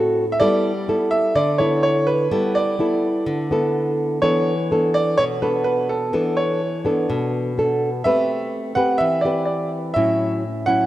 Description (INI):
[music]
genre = bossa nova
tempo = 126 BPM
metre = 4/4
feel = straight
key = unclear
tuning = A4 = 440 Hz
[part]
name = nylon-string guitar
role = accompaniment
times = 0.0-10.9 s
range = A2 to B4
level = -20 LUFS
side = left 1 dB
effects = none
[part]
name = clear concert grand piano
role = melody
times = 0.3-10.9 s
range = A4 to F#5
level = -21 LUFS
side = right 2 dB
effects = none
[sound]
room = moderate lush hall reverb, RT60 2.7 s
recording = rough home demo mix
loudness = -18 LUFS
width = side -14 dB against mid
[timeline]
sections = 0.4-10.9 A section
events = none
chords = 0.4 G69; 4.2 E7sus4; 8.0 Am9; 9.9 A6